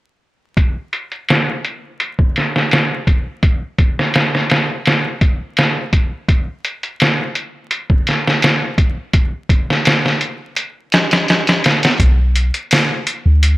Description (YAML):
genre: trip hop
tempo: 84 BPM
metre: 4/4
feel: straight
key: B minor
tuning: A4 = 440 Hz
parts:
  - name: trip hop sampler-style drum kit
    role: drums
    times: 0.6-13.6 s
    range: hi-hat, kick drum, snare drum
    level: -13 LUFS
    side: equal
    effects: low-pass filter on kick, low-pass filter on hats, low-pass filter on snare, low-pass filter on room
  - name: soft 808-style bass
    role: bass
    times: 12.0-13.6 s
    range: B1 to D2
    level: -11 LUFS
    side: equal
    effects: tube saturation
room: light reverb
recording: vinyl crackle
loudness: -14 LUFS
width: side -18 dB against mid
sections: 0.6-12.0 A section; 12.0-13.6 B section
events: none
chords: none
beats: | 0.57 1.29 2.00 2.71 | 3.43 4.14 4.86 5.57 | 6.29 7.00 7.71 8.43 | 9.14 9.86 10.57 11.29 | 12.00 12.71 13.43